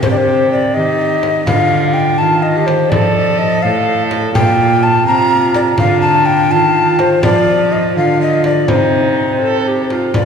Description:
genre	classical, renaissance-style consort dance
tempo	83 BPM (dotted quarters)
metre	6/8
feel	straight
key	C dorian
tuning	A4 = 442 Hz
part	mellow hollow tenor recorder	melody	0.0-10.2 s	C5 to Bb5	-14 LUFS	left 3 dB	none
part	warm viola	second line	0.0-10.2 s	Eb4 to A4	-18 LUFS	right 2 dB	none
part	rich cello	bass	0.0-10.2 s	A2 to F3	-17 LUFS	right 2 dB	none
part	frame drum	percussion	0.0-10.2 s	none	-20 LUFS	right 1 dB	none
room	wet church reverb, RT60 3.3 s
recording	recorded in a church or concert hall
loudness	-10 LUFS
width	side -6 dB against mid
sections	0.0-10.1 A section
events	none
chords	0.0 Cm; 1.5 Dm; 2.9 F; 4.3 Bb5; 5.8 Dm; 8.7 Cm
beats	| 0.03 0.75 | 1.47 2.19 | 2.91 3.63 | 4.35 5.07 | 5.79 6.51 | 7.23 7.95 | 8.68 9.41 | 10.14

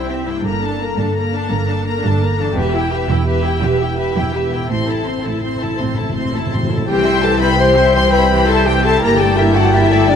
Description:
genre	cinematic, heroic adventure film score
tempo	112 BPM (dotted quarters)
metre	12/8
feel	straight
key	unclear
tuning	A4 = 439 Hz
part	rich symphonic violin section	melody	0.0-10.2 s	D5 to C6	-24 LUFS	left 5 dB	none
part	warm symphonic violin section	second line	0.0-10.2 s	G4 to C6	-24 LUFS	left 3 dB	none
part	rich symphonic viola section	accompaniment	0.0-10.2 s	E3 to A4	-22 LUFS	right 2 dB	none
part	mellow French horn section	sustained chords	0.0-10.2 s	G3 to C5	-20 LUFS	left 3 dB	none
part	concert harp	arpeggios	0.0-10.2 s	E2 to G5	-24 LUFS	left 6 dB	none
part	rich symphonic cello section	bass	0.0-10.2 s	C2 to C3	-22 LUFS	right 3 dB	none
part	rich symphonic double bass section	bass	0.0-10.2 s	E1 to C2	-21 LUFS	right 3 dB	none
part	timpani	percussion	4.7-6.8 s	A2	-24 LUFS	left 1 dB	none
part	clear oboe	second line	6.9-10.2 s	G5 to A5	-24 LUFS	equal	none
part	silver concert flute	second line	6.9-10.2 s	D5 to C6	-25 LUFS	left 1 dB	none
part	warm clarinet	second line	6.9-10.2 s	D4 to E4	-25 LUFS	left 3 dB	none
room	wet scoring stage reverb, RT60 1.8 s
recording	none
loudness	-13 LUFS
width	side -8 dB against mid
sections	0.0-6.9 A section; 6.9-10.2 B section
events	timpani fill 4.7-6.9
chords	0.4 Gmadd9; 2.6 Em; 4.7 Am; 6.9 C; 9.0 Gmadd9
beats	| 0.44 0.98 1.51 2.04 | 2.57 3.10 3.63 4.17 | 4.71 5.25 5.80 6.35 | 6.89 7.43 7.96 8.49 | 9.03 9.56 10.10

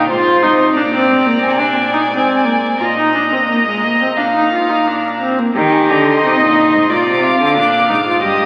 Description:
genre	classical, baroque-style fugue for string quartet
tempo	89 BPM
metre	4/4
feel	straight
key	unclear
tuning	A4 = 440 Hz
part	rich violin	melody	0.0-8.5 s	G5 to Eb6	-22 LUFS	equal	none
part	rich violin	second line	0.0-8.5 s	C5 to F5	-19 LUFS	equal	none
part	rich viola	accompaniment	0.0-8.5 s	Ab3 to G4	-17 LUFS	equal	none
part	clear cello	bass	0.0-8.5 s	G2 to Eb3	-22 LUFS	equal	none
room	wet concert hall reverb, RT60 2.2 s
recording	very old 78 rpm record, vinyl crackle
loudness	-14 LUFS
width	mono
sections	0.0-5.6 A section; 5.6-8.5 B section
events	none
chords	0.1 Ab; 2.8 Bbsus4; 4.2 Bb; 5.6 Eb; 6.9 Bb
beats	| 0.10 0.76 1.43 2.11 | 2.81 3.50 4.18 4.87 | 5.55 6.23 6.90 7.57 | 8.23

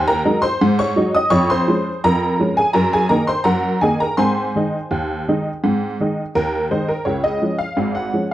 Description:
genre	ragtime piano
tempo	84 BPM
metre	2/4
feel	straight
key	Db major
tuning	A4 = 440 Hz
part	honky-tonk upright piano	solo	0.0-8.3 s	Ab1 to Eb6	-16 LUFS	equal	none
room	studio ambience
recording	dry, close 1970s-style studio recording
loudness	-16 LUFS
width	side -13 dB against mid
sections	0.0-7.1 A section; 7.1-8.3 B section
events	none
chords	0.0 Ab7/Eb; 1.3 Db/F; 2.7 Ebm/Gb; 4.2 Ab; 7.1 Db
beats	0.60 | 1.31 2.03 | 2.74 3.46 | 4.18 4.91 | 5.63 6.35 | 7.07 7.79

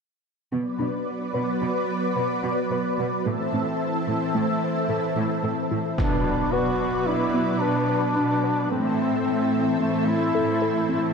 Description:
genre	cinematic, hybrid orchestral and electronic film score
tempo	110 BPM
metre	5/4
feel	straight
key	unclear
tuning	A4 = 440 Hz
part	analog string pad	sustained chords	0.5-11.1 s	E3 to E5	-25 LUFS	equal	ensemble chorus
part	harp-like synth pluck	arpeggios	0.5-11.1 s	A3 to B4	-30 LUFS	left 2 dB	chorus, ping-pong delay
part	warm symphonic cello section	bass	0.5-11.1 s	A2 to B2	-29 LUFS	right 4 dB	none
part	warm duduk	melody	6.0-11.1 s	A3 to F#4	-24 LUFS	left 2 dB	ping-pong delay
part	impact	sound effects	6.0-8.7 s	none	-29 LUFS	equal	none
room	wet scoring stage reverb, RT60 2.0 s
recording	none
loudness	-22 LUFS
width	side -5 dB against mid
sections	0.5-6.0 A section; 6.0-11.1 B section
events	impact 6.0-8.7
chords	0.5 Bm; 3.3 Am; 6.0 Bm; 8.7 Am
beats	| 0.53 1.07 1.62 2.16 2.71 | 3.25 3.80 4.35 4.89 5.44 | 5.98 6.53 7.07 7.62 8.16 | 8.71 9.26 9.80 10.35 10.89

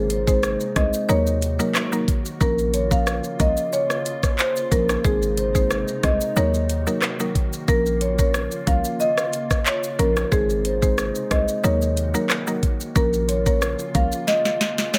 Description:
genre	dancehall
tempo	91 BPM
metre	4/4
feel	straight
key	Bb minor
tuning	A4 = 441 Hz
part	mallet-like synth pluck	accompaniment	0.0-14.3 s	F3 to C5	-29 LUFS	equal	chorus
part	glassy FM pad	sustained chords	0.0-15.0 s	C3 to Gb4	-36 LUFS	equal	ensemble chorus, built-in reverb, sidechain pumping
part	hard-hitting 808-style bass	bass	0.0-14.1 s	Ab1 to Eb2	-27 LUFS	equal	none
part	marimba with medium mallets	melody	0.1-15.0 s	Ab4 to F5	-26 LUFS	equal	delay
part	afro-pop drum kit	drums	0.1-15.0 s	handclaps, hi-hat, kick drum, rim click, shaker, snare drum	-25 LUFS	equal	none
part	maracas and timbales	percussion	0.3-15.0 s	none	-39 LUFS	equal	none
room	digital ambience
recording	none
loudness	-21 LUFS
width	mono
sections	0.0-15.0 A section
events	drum fill 14.3-15.0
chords	0.0 Ab; 1.1 Ebm; 2.4 Bbm; 5.0 Ab; 6.4 Ebm; 7.7 Bbm; 10.3 Ab; 11.6 Ebm; 13.0 Bbm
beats	0.43 1.09 1.75 | 2.41 3.07 3.73 4.39 | 5.05 5.71 6.37 7.02 | 7.68 8.34 9.00 9.66 | 10.32 10.98 11.64 12.30 | 12.96 13.62 14.28 14.94

